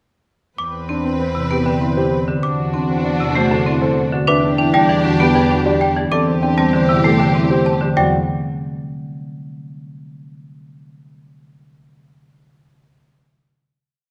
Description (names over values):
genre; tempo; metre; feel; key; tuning
classical, minimalist pattern music; 195 BPM; 6/4; straight; E minor; A4 = 439 Hz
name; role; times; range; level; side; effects
rich studio string section; sustained chords; 0.6-7.8 s; C4 to B4; -26 LUFS; equal; none
trough xylophone with rubber mallets; arpeggios; 0.6-8.1 s; G5 to D6; -24 LUFS; equal; none
warm studio double bass section; bass; 0.6-8.1 s; E2; -24 LUFS; equal; none
marimba with hard mallets; accompaniment; 0.9-8.1 s; C3 to D4; -22 LUFS; equal; none
dark concert grand piano; arpeggios; 0.9-8.1 s; C4 to D5; -24 LUFS; equal; none
warm baby grand piano; melody; 1.2-8.1 s; G4 to A5; -26 LUFS; equal; none
room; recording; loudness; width
moderate scoring stage reverb, RT60 1.7 s; none; -17 LUFS; mono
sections
0.6-8.0 A section; 8.0-9.8 final chord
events
none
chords
0.6 Cmaj7/E; 2.4 D7/E; 4.3 Em7; 6.1 Am7/E; 8.0 Em